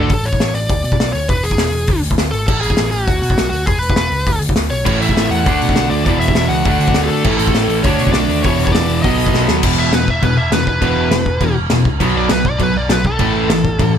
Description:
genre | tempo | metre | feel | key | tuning
punk rock | 202 BPM | 4/4 | straight | E mixolydian | A4 = 441 Hz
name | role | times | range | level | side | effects
bluesy overdriven lead guitar | melody | 0.0-13.9 s | F#4 to F#5 | -20 LUFS | equal | distortion
overdriven semi-hollow guitar | riff | 0.0-0.1, 4.8-13.9 s | E2 to D4 | -19 LUFS | right 11 dB | none
tight distorted guitar | riff | 0.0-0.1, 4.9-13.9 s | E2 to D4 | -20 LUFS | left 12 dB | distortion
overdriven picked electric bass | bass | 0.0-14.0 s | E1 to D3 | -20 LUFS | equal | none
loose indie drum kit | drums | 0.1-13.9 s | crash cymbal, hi-hat, kick drum, snare drum | -17 LUFS | equal | none
room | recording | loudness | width
little or no reverb | none | -13 LUFS | side -8 dB against mid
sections
0.1-9.6 A section; 9.6-14.0 B section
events
drum fill 9.3; lead electric guitar solo 9.6-14.0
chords
0.1 A; 0.7 Bmadd9; 1.3 E; 1.9 D5; 2.5 F#madd9/A; 3.1 D; 3.7 E5; 4.3 Bmadd9; 4.9 A5; 5.5 D; 6.1 E5; 6.7 D; 7.2 A5; 7.8 D5; 8.4 E5; 9.0 B; 9.6 E5; 12.0 B5; 13.2 A5

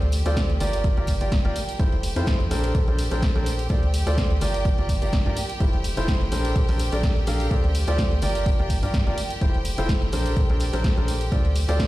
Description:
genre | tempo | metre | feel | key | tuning
piano house | 126 BPM | 4/4 | swing 54% on 16ths | unclear | A4 = 437 Hz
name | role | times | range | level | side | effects
bright symphonic violin section | sustained chords | 0.0-11.9 s | G4 to G5 | -34 LUFS | right 1 dB | sidechain pumping
clear grand piano | riff | 0.0-11.9 s | D4 to F5 | -28 LUFS | equal | vintage 12-bit sampler grit, sidechain pumping, dub echo
organ-like FM bass | bass | 0.0-11.9 s | F1 to G2 | -25 LUFS | equal | sidechain pumping
punchy analog drum machine | drums | 0.0-11.9 s | hi-hat, snare drum | -32 LUFS | equal | overdrive
tambourine | percussion | 0.1-11.9 s | none | -42 LUFS | equal | none
electronic kick drum | drums | 0.4-11.9 s | none | -22 LUFS | equal | overdrive
room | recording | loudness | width
small room ambience | played on a big sound system in a bare room, stone room reverb | -20 LUFS | side -16 dB against mid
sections
0.0-11.9 A section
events
none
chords
0.0 Dm7; 0.6 Gm7; 1.6 Fmaj7; 2.7 Bbmaj9; 3.7 Dm7; 4.4 Gm7; 5.4 Fmaj7; 6.6 Bbmaj9; 7.5 Dm7; 8.2 Gm7; 9.2 Fmaj7; 10.4 Bbmaj9; 11.3 Dm7

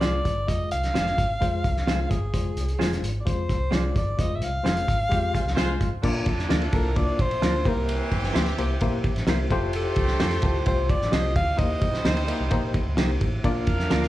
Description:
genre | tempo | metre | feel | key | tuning
uptempo 1960s-style soul | 130 BPM | 4/4 | straight | unclear | A4 = 440 Hz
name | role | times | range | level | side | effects
breathy alto saxophone | melody | 0.0-12.3 s | Ab4 to F5 | -28 LUFS | left 1 dB | none
barky reed electric piano | accompaniment | 0.0-14.1 s | Ab3 to F5 | -30 LUFS | left 3 dB | fast tremolo
semi-hollow electric guitar | stabs | 0.0-14.0 s | A3 to D5 | -32 LUFS | right 6 dB | none
vintage muted fingered electric bass | bass | 0.0-14.1 s | F1 to F2 | -28 LUFS | equal | none
cloth-damped thuddy drum kit | drums | 0.0-14.1 s | crash cymbal, hi-hat, kick drum, ride cymbal, snare drum | -26 LUFS | equal | none
warm horn section | second line | 5.3-14.1 s | E3 to F5 | -32 LUFS | right 1 dB | none
room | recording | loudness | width
moderate large studio reverb, RT60 0.8 s | band playing live in one room | -22 LUFS | side -15 dB against mid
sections
0.0-6.0 A section; 6.0-14.1 B section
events
band accent 4.2-6.0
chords
0.0 Fm; 6.0 Bb; 7.7 C7; 9.5 Fadd9; 11.6 Eb6; 13.4 Bb

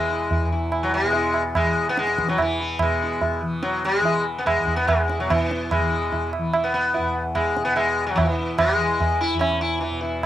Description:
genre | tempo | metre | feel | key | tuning
indian classical, Hindustani | 145 BPM | 7/4 | straight | unclear | A4 = 440 Hz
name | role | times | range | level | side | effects
sitar | melody | 0.0-10.2 s | E3 to E4 | -22 LUFS | left 2 dB | cassette tape
tanpura | drone | 0.0-10.3 s | E2 to E3 | -28 LUFS | left 1 dB | stereo widening, cassette tape
tabla | percussion | 0.3-10.3 s | none | -24 LUFS | right 2 dB | none
room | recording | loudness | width
light reverb | home recording on cassette | -20 LUFS | side -12 dB against mid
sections
0.0-2.8 A section; 2.8-10.3 B section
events
none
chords
none

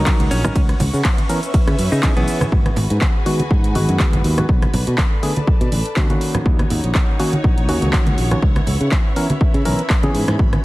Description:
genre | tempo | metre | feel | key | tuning
deep house | 122 BPM | 4/4 | swing 55% on 16ths | G# minor | A4 = 441 Hz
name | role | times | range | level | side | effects
airy breathy pad | sustained chords | 0.0-10.6 s | B3 to C#6 | -30 LUFS | left 1 dB | chorus, vintage 12-bit sampler grit, sidechain pumping
percussive organ stab | stabs | 0.0-10.4 s | D3 to A#4 | -23 LUFS | equal | chorus, cassette tape, sidechain pumping, analog delay
modern bright fingered electric bass | bass | 0.0-10.6 s | F#1 to C#3 | -20 LUFS | equal | sidechain pumping
rich symphonic string section | texture | 0.0-10.6 s | C#4 to B5 | -31 LUFS | left 1 dB | sidechain pumping
electronic kick drum | drums | 0.1-10.5 s | none | -17 LUFS | equal | overdrive
house drum kit | drums | 0.1-10.6 s | handclaps, hi-hat, ride cymbal, rim click, shaker | -26 LUFS | equal | overdrive
congas | percussion | 0.1-10.6 s | none | -23 LUFS | right 1 dB | none
direct-recorded clean electric guitar | melody | 0.3-2.5 s | B3 to D#4 | -28 LUFS | equal | tape echo
room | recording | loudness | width
little or no reverb | dense, heavily limited modern master, vinyl crackle | -15 LUFS | side -18 dB against mid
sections
0.0-2.5 A section; 2.5-10.6 B section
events
drop 0.0-2.5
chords
0.0 D#m7; 0.6 C#m7; 2.5 G#m7; 4.5 Bm7; 6.2 D#m7; 8.4 C#m7

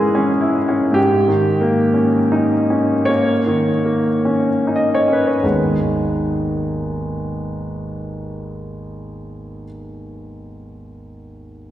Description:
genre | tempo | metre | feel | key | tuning
classical, romantic nocturne for solo piano | 24-39 BPM (dotted quarters) | 6/8 | rubato | G# minor | A4 = 438 Hz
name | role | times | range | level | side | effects
bright baby grand piano | solo | 0.0-11.7 s | G#1 to D#5 | -16 LUFS | equal | none
room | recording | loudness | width
wet concert hall reverb, RT60 2.2 s | heard from further back in the room | -15 LUFS | side -12 dB against mid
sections
0.0-5.4 A section; 5.4-9.6 B section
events
slowing down 0.0-5.4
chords
0.0 C#m/G#; 1.0 D#7/G#; 5.4 G#m

